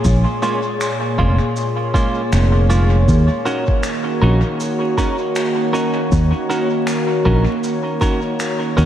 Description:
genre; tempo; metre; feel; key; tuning
ambient dub; 79 BPM; 4/4; swing 58% on 16ths; Eb minor; A4 = 441 Hz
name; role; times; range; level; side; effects
warbly tape-like pad; sustained chords; 0.0-8.9 s; Bb2 to Db5; -20 LUFS; equal; chorus, built-in reverb
fingered electric bass; bass; 0.0-8.9 s; F1 to Eb2; -13 LUFS; equal; none
electronic kick drum; drums; 0.0-8.2 s; none; -19 LUFS; equal; none
shaker and finger snaps; drums; 0.0-8.9 s; none; -30 LUFS; equal; dub echo
clean electric guitar; stabs; 0.4-8.9 s; Ab3 to Bb4; -23 LUFS; right 2 dB; dub echo
room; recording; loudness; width
moderate lush hall reverb, RT60 2.7 s; dreamy mix soaked in reverb, vinyl crackle; -15 LUFS; side -11 dB against mid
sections
0.0-8.9 A section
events
none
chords
0.0 Bbm7; 3.1 Ebm7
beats
| 0.04 0.81 1.56 2.32 | 3.08 3.84 4.60 5.36 | 6.12 6.88 7.64 8.40

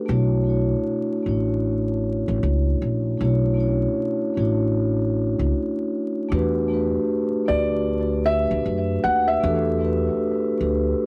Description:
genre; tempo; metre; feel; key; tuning
lo-fi hip hop; 77 BPM; 4/4; swing 62% on 16ths; B minor; A4 = 441 Hz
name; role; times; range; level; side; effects
vibraphone with soft mallets; accompaniment; 0.0-11.1 s; A3 to C#5; -25 LUFS; equal; cassette tape
upright bass; bass; 0.1-10.9 s; A1 to F#2; -26 LUFS; equal; none
felt-muted upright piano; melody; 7.5-11.1 s; D5 to F#5; -26 LUFS; equal; cassette tape, tape echo
room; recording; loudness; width
moderate spring reverb, RT60 1.2 s, small room ambience; home recording on cassette, vinyl crackle; -22 LUFS; mono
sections
0.0-11.1 A section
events
none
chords
0.1 Bm11; 6.3 Em11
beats
| 0.08 0.86 1.64 2.42 | 3.19 3.97 4.75 5.53 | 6.31 7.09 7.87 8.65 | 9.43 10.21 10.99

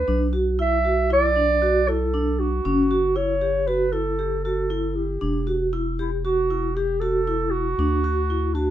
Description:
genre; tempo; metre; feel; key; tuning
contemporary instrumental, chamber music in an uneven meter; 117 BPM; 5/4; straight; E dorian; A4 = 445 Hz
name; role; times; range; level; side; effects
dark clarinet; melody; 0.0-8.7 s; D4 to E5; -23 LUFS; right 2 dB; none
round analog bass; bass; 0.0-8.7 s; E1 to D2; -26 LUFS; left 1 dB; none
vibraphone with medium mallets; arpeggios; 0.1-8.7 s; C#4 to G4; -24 LUFS; right 1 dB; none
room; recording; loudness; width
light reverb; close, detailed microphones; -20 LUFS; side -11 dB against mid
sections
0.0-8.7 A section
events
none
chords
0.1 Bm7; 2.6 F#m7; 5.2 Em; 7.8 D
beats
| 0.08 0.59 1.11 1.62 2.14 | 2.65 3.16 3.68 4.19 4.71 | 5.22 5.73 6.25 6.76 7.27 | 7.79 8.30

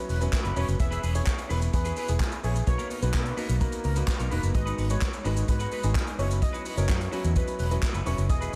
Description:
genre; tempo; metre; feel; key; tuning
dance-pop; 128 BPM; 4/4; straight; unclear; A4 = 440 Hz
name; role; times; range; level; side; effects
octave-doubled lead; melody; 0.0-8.5 s; A#4 to E5; -39 LUFS; equal; chorus, sidechain pumping, analog delay
clear baby grand piano; accompaniment; 0.0-8.6 s; F#3 to B4; -36 LUFS; equal; none
vintage muted fingered electric bass; bass; 0.1-8.6 s; E1 to B2; -29 LUFS; equal; sidechain pumping
unplugged drum kit; drums; 0.1-8.6 s; handclaps, hi-hat, kick drum, shaker, snare drum; -31 LUFS; equal; none
electric guitar at the edge of break-up; riff; 0.2-8.6 s; B3 to B4; -41 LUFS; equal; lush chorus
room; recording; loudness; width
light reverb, small room ambience; none; -27 LUFS; mono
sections
0.0-8.6 A section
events
none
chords
0.0 F#7sus4; 0.8 E; 2.7 Bmaj7; 4.5 G#m7; 6.2 F#7sus4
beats
0.33 | 0.80 1.27 1.73 2.20 | 2.67 3.14 3.61 4.08 | 4.55 5.02 5.48 5.95 | 6.42 6.89 7.36 7.83 | 8.30

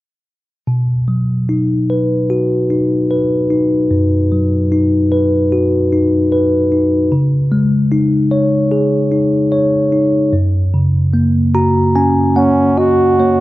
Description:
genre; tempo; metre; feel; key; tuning
pop ballad; 74 BPM; 4/4; straight; unclear; A4 = 440 Hz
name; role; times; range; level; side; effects
bell-like tine electric piano; accompaniment; 0.7-13.4 s; F#2 to A#5; -12 LUFS; equal; none
breathy flugelhorn; melody; 12.4-13.4 s; C#4 to F#4; -12 LUFS; right 2 dB; none
room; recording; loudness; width
moderate plate reverb, RT60 2.8 s; none; -12 LUFS; side -17 dB against mid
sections
0.7-13.4 A section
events
tine electric piano fill 11.1-13.4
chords
0.7 B; 7.1 C#sus2; 10.3 F#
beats
| 0.68 1.49 2.30 3.11 | 3.91 4.71 5.52 6.32 | 7.11 7.91 8.71 9.52 | 10.33 11.13 11.95 12.78

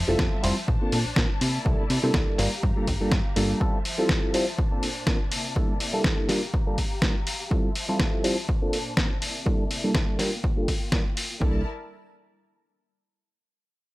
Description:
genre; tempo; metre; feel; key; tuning
filtered disco house; 123 BPM; 4/4; swing 55% on 16ths; C mixolydian; A4 = 440 Hz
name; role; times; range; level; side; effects
clear symphonic string section; sustained chords; 0.0-11.6 s; Bb2 to Bb5; -36 LUFS; left 2 dB; sidechain pumping, low-pass filter
plucky analog bass; bass; 0.0-3.5, 11.4-11.6 s; F1 to C3; -27 LUFS; equal; sidechain pumping, low-pass filter
reed electric piano; accompaniment; 0.1-11.6 s; G3 to C5; -27 LUFS; equal; phaser, sidechain pumping, low-pass filter
dusty soul sampler-style drum kit; drums; 0.2-11.3 s; hi-hat, snare drum; -28 LUFS; equal; sidechain pumping on hats, studio reverb
electronic kick drum; drums; 0.2-11.5 s; none; -26 LUFS; equal; studio reverb
room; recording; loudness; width
digital ambience; dry, gritty hardware recording; -22 LUFS; side -19 dB against mid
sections
0.0-11.4 A section; 11.4-13.4 B section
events
filter sweep 0.0-11.4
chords
0.0 Fmaj7; 0.7 Bbmaj9; 1.4 C13; 2.4 Gm7; 3.6 Fmaj7; 4.6 Bbmaj9; 5.3 C13; 6.3 Gm7; 7.5 Fmaj7; 8.5 Bbmaj9; 9.2 C13; 10.2 Gm7; 11.4 C13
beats
0.20 0.68 1.17 | 1.66 2.15 2.63 3.12 | 3.61 4.10 4.58 5.07 | 5.56 6.05 6.54 7.02 | 7.51 8.00 8.49 8.97 | 9.46 9.95 10.44 10.93 | 11.41

